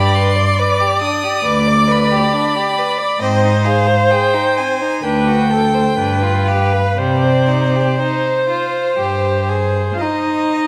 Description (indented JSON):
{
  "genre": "classical, slow romantic movement for string quartet",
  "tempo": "58-70 BPM",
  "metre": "4/4",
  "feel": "rubato",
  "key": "C minor",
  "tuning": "A4 = 440 Hz",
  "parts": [
    { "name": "clear violin", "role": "melody", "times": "0.0-10.0 s", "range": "C5 to Eb6", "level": "-23 LUFS", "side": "equal", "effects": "none" },
    { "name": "clear violin", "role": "second line", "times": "0.0-10.7 s", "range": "G3 to Eb5", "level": "-23 LUFS", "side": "equal", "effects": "none" },
    { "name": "rich viola", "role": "accompaniment", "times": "0.0-10.5 s", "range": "A4 to D5", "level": "-21 LUFS", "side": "equal", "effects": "none" },
    { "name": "clear cello", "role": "bass", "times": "0.0-10.7 s", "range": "D2 to F4", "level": "-20 LUFS", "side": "equal", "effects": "none" }
  ],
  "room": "moderate recital hall reverb, RT60 1.5 s",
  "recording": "none",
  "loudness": "-15 LUFS",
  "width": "mono",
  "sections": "0.0-10.7 A section",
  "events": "none",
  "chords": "0.0 G; 3.2 Ab; 5.0 D7; 6.0 G7; 7.0 Cm",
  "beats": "0.58 1.45 2.34 | 3.22 4.12 5.05 5.98 | 6.98 8.00 8.98 10.02"
}